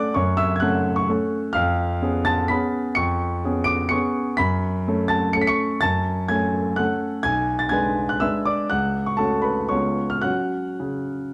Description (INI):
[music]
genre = classical, piano waltz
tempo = 106-134 BPM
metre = 3/4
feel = rubato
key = F# minor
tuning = A4 = 441 Hz
[part]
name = warm grand piano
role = solo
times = 0.0-11.3 s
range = B1 to D7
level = -22 LUFS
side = equal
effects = none
[sound]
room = moderate recital hall reverb, RT60 1.4 s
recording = close, detailed microphones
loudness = -22 LUFS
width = mono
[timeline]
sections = 0.0-11.3 A section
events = none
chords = 0.0 F#m; 1.5 C#7/E#; 4.4 F#m; 7.3 G#dim/B; 8.7 F#m/C#; 9.7 C#7; 10.3 F#5